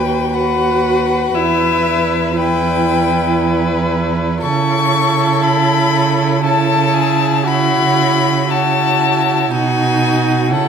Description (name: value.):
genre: classical, slow romantic movement for string quartet.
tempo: 59 BPM.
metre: 3/4.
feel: rubato.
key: E minor.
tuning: A4 = 445 Hz.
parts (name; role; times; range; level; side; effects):
clear violin; melody; 0.0-10.7 s; E5 to C#6; -18 LUFS; left 9 dB; none.
dark violin; second line; 0.0-10.7 s; F#4 to B4; -18 LUFS; left 2 dB; none.
warm viola; accompaniment; 0.0-10.7 s; D#4 to F#4; -19 LUFS; right 3 dB; none.
rich cello; bass; 0.0-10.7 s; D#2 to C#3; -18 LUFS; right 6 dB; none.
room: wet recital hall reverb, RT60 1.2 s.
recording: none.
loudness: -12 LUFS.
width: side -7 dB against mid.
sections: 0.0-10.7 A section.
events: none.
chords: 0.0 B/D#; 1.3 Em; 4.4 A/C#; 9.5 B.